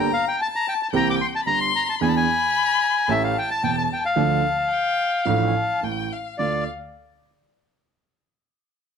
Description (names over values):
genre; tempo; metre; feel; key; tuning
tango; 111 BPM; 4/4; rubato; D minor; A4 = 440 Hz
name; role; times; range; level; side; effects
bandoneon; melody; 0.0-6.6 s; D5 to D6; -22 LUFS; left 2 dB; plate reverb
warm violin; second line; 0.0-6.7 s; F5 to C6; -27 LUFS; left 6 dB; none
warm concert grand piano; accompaniment; 0.0-6.6 s; E1 to A4; -24 LUFS; right 5 dB; none
room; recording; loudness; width
moderate club reverb, RT60 0.8 s; close, detailed microphones; -19 LUFS; side -7 dB against mid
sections
0.0-6.4 A section; 6.4-8.6 B section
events
none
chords
0.0 Gmadd9; 0.9 C7; 2.0 E7; 3.1 A7; 4.2 Dm; 5.8 N.C.; 6.4 Dm